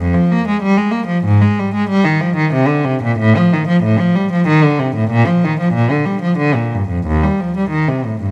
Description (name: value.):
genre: classical, baroque-style suite movement for unaccompanied cello.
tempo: 93 BPM.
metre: 3/4.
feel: uneven beats, rubato.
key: Bb major from 3.2 s.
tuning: A4 = 439 Hz.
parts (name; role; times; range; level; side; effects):
rich cello; solo; 0.0-8.3 s; Eb2 to Bb3; -15 LUFS; equal; none.
room: moderate scoring stage reverb, RT60 1.9 s.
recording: close, detailed microphones.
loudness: -15 LUFS.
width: mono.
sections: 0.0-8.3 A section.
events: none.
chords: none.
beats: 0.00 0.63 | 1.27 1.90 2.52 | 3.17 3.83 4.46 | 5.10 5.73 6.38 | 7.05 7.72.